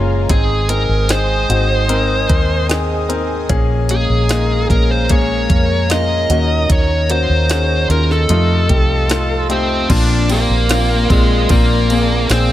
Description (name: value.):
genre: pop ballad.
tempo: 75 BPM.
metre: 4/4.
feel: straight.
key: unclear.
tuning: A4 = 440 Hz.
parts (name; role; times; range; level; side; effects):
warm grand piano; accompaniment; 0.0-12.5 s; Bb2 to Bb4; -20 LUFS; left 6 dB; none.
airy breathy pad; sustained chords; 0.0-12.5 s; A4 to Eb6; -27 LUFS; equal; chorus.
direct-recorded clean electric guitar; arpeggios; 0.0-12.5 s; F2 to Ab4; -26 LUFS; right 6 dB; phaser, digital delay.
vintage muted fingered electric bass; bass; 0.0-12.5 s; Gb1 to F2; -17 LUFS; equal; none.
dark smooth lead guitar; melody; 0.3-12.5 s; Ab3 to Eb5; -18 LUFS; right 1 dB; overdrive.
smooth R&B drum kit; drums; 0.3-12.5 s; crash cymbal, hi-hat, kick drum, ride cymbal, snare drum; -17 LUFS; equal; none.
room: light reverb.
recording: none.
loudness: -12 LUFS.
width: side -13 dB against mid.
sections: 0.0-9.9 A section; 9.9-12.5 B section.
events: none.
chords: 0.3 Ab; 3.5 Bbm7; 6.3 Ebm7; 8.3 F7; 9.9 Bbadd9.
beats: | 0.30 1.10 1.90 2.70 | 3.50 4.30 5.10 5.90 | 6.70 7.50 8.30 9.10 | 9.90 10.70 11.50 12.30.